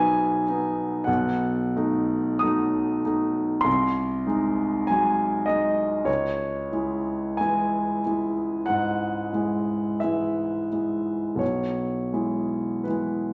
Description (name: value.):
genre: classical, romantic nocturne for solo piano.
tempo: 41-53 BPM.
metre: 4/4.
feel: rubato.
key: unclear.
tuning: A4 = 439 Hz.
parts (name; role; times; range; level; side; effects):
warm concert grand piano; solo; 0.0-13.3 s; B1 to D#6; -25 LUFS; equal; none.
room: wet stone room reverb, RT60 1.2 s.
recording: none.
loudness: -25 LUFS.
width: mono.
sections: 0.0-13.3 A section.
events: none.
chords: 0.0 B; 1.1 B7; 3.7 G#7/B#; 6.1 C#m; 11.4 E/B.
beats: | 1.07 2.44 3.66 4.89 | 6.07 7.41 8.67 10.00 | 11.40 12.86.